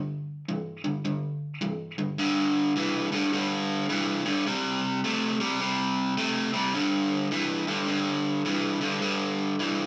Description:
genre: blues.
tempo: 105 BPM.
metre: 4/4.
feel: swing 63% on 8ths.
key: unclear.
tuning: A4 = 441 Hz.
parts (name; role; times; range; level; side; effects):
raw garage guitar; solo; 0.0-9.9 s; G2 to A3; -28 LUFS; equal; overdrive.
room: moderate studio reverb, RT60 0.7 s.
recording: band playing live in one room.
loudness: -28 LUFS.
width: mono.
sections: 0.0-2.2 A section; 2.2-9.9 B section.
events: none.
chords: 0.0 G5; 4.5 C5; 6.7 G5.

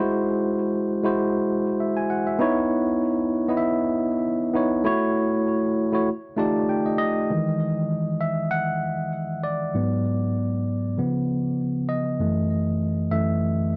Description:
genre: soul.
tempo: 98 BPM.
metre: 4/4.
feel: swing 54% on 16ths.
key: E major.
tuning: A4 = 440 Hz.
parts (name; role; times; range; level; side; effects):
tine electric piano; solo; 0.0-13.8 s; F#2 to A5; -24 LUFS; equal; none.
room: light reverb.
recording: dry, close 1970s-style studio recording.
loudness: -24 LUFS.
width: mono.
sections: 0.0-7.3 A section; 7.3-13.8 B section.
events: tine electric piano fill 6.1-7.3; tine electric piano solo 7.3-13.8.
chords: 0.0 G#7b13; 2.4 C#m9; 4.9 F#m7; 6.1 F13; 7.3 Emaj9; 9.8 G#m7b5; 11.0 C#7; 12.2 F#m7.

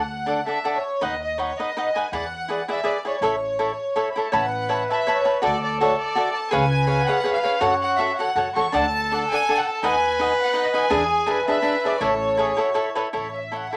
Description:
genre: mexican folk, mariachi.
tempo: 163 BPM.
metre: 3/4.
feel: swing 54% on 8ths, rubato.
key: A major.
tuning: A4 = 440 Hz.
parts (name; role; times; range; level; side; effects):
rich chamber violin section; melody; 0.0-13.8 s; B4 to C#6; -27 LUFS; equal; none.
upright bass; bass; 0.0-13.7 s; A1 to F#2; -33 LUFS; equal; none.
cavaquinho; accompaniment; 0.3-13.8 s; D4 to B5; -26 LUFS; equal; none.
mellow trumpet; second line; 4.3-13.2 s; E4 to C#5; -27 LUFS; equal; none.
room: moderate club reverb, RT60 0.5 s.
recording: vinyl crackle.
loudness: -22 LUFS.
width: mono.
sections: 0.0-4.3 A section; 4.3-13.2 A section.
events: none.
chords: 0.0 D; 1.0 B/D#; 2.1 E7; 3.2 A; 4.3 Aadd9; 5.4 Dadd9; 6.5 C#7; 7.6 F#m; 8.7 D; 9.8 B/D#; 10.9 E7; 12.0 A.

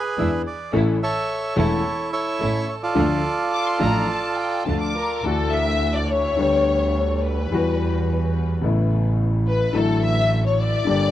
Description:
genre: tango.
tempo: 108 BPM.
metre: 4/4.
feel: rubato.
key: D minor, D major from 5.2 s.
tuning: A4 = 441 Hz.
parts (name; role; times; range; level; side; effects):
bandoneon; melody; 0.0-4.6 s; E4 to E5; -24 LUFS; right 3 dB; tape echo.
clear concert grand piano; accompaniment; 0.2-11.1 s; E1 to A4; -23 LUFS; left 3 dB; none.
muted symphonic string section; stabs; 0.2-4.9 s; G#3 to F4; -30 LUFS; right 4 dB; none.
warm double bass; bass; 0.2-11.1 s; E1 to E2; -23 LUFS; right 2 dB; none.
warm studio violin section; second line; 3.5-11.1 s; A4 to D6; -24 LUFS; left 3 dB; tape echo.
room: little or no reverb.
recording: dry, close 1970s-style studio recording.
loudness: -19 LUFS.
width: side -12 dB against mid.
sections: 0.0-5.2 A section; 5.2-11.1 B section.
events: violin section solo 5.2-11.1.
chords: 0.0 E7; 0.7 A; 3.0 Dm; 5.2 Dadd9; 6.4 G/D; 7.5 Emadd9; 8.6 Aadd9; 9.7 Dadd9/A.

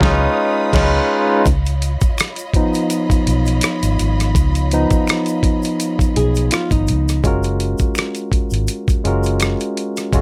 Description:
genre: R&B, neo-soul.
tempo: 83 BPM.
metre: 4/4.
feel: swing 54% on 16ths.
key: unclear.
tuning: A4 = 440 Hz.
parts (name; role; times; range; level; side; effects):
barky tine electric piano; accompaniment; 0.0-10.2 s; E#3 to B4; -21 LUFS; equal; none.
dark studio string section; sustained chords; 0.0-7.2 s; E#4 to D#6; -31 LUFS; equal; none.
vintage muted fingered electric bass; bass; 0.0-10.2 s; F#1 to C#2; -20 LUFS; equal; none.
boom bap sampler-style drum kit; drums; 0.0-10.2 s; crash cymbal, hi-hat, kick drum, rim click, snare drum; -20 LUFS; equal; none.
tube shaker and finger snaps; percussion; 1.5-10.2 s; none; -34 LUFS; equal; none.
flamenco guitar; second line; 6.2-7.2 s; D#4 to G#4; -24 LUFS; equal; none.
room: light reverb.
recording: none.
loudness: -17 LUFS.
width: mono.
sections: 0.0-1.4 A section; 1.4-7.2 B section; 7.2-10.2 C section.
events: band accent 0.0-1.4; tine electric piano solo 1.4-7.2.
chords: 0.0 C#9; 7.2 F#maj9.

